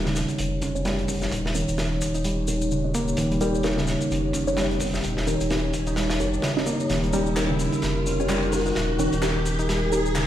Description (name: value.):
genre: breakbeat, breaks.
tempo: 129 BPM.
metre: 4/4.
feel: swing 58% on 16ths.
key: unclear.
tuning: A4 = 442 Hz.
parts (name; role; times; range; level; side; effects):
dark analog pad; sustained chords; 0.1-10.3 s; Eb4 to Db5; -30 LUFS; equal; chorus, phaser, sidechain pumping.
reed electric piano; riff; 0.0-10.3 s; Db3 to Eb4; -26 LUFS; equal; tube saturation, low-pass filter, ping-pong delay.
saturated sub bass; bass; 0.0-10.3 s; Eb1 to F1; -29 LUFS; equal; none.
riser; sound effects; 0.0-10.3 s; none; -35 LUFS; equal; none.
crunchy breakbeat drum kit; drums; 0.1-10.3 s; hi-hat, kick drum, snare drum; -32 LUFS; equal; high-pass filter on kick, high-pass filter on hats, high-pass filter on snare, high-pass filter on room.
electronic shaker and handclaps; drums; 0.2-10.3 s; none; -35 LUFS; left 2 dB; none.
filtered dub chord stab; stabs; 0.8-10.0 s; Db4 to Eb5; -30 LUFS; equal; phaser, vintage 12-bit sampler grit, ping-pong delay.
room: moderate plate reverb, RT60 1.0 s, studio ambience.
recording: played on a big sound system in a bare room, stone room reverb.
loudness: -22 LUFS.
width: side -11 dB against mid.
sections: 0.0-10.3 A section.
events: build-up 0.0-10.3; riser 0.0-10.3; filter sweep on reed electric piano 0.0-10.3; filter sweep on synth stab 0.0-10.3; drum fill 6.9-10.3.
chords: 0.0 Eb7.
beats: 0.39 0.85 | 1.32 1.78 2.25 2.71 | 3.18 3.64 4.11 4.57 | 5.04 5.50 5.97 6.43 | 6.90 7.36 7.83 8.29 | 8.76 9.22 9.69 10.15.